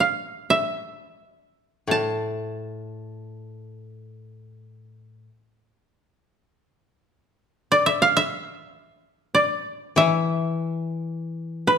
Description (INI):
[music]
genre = japanese traditional, Japanese chamber music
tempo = free time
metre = none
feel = none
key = unclear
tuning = A4 = 440 Hz
[part]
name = koto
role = melody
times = 0.0-11.8 s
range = B4 to A5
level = -20 LUFS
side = right 1 dB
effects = none
[part]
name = koto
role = accompaniment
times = 1.9-11.8 s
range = A2 to E3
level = -26 LUFS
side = left 4 dB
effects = none
[sound]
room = moderate recital hall reverb, RT60 1.4 s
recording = none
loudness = -21 LUFS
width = side -7 dB against mid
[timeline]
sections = 0.0-11.8 A section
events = slowing down 7.3-11.8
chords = none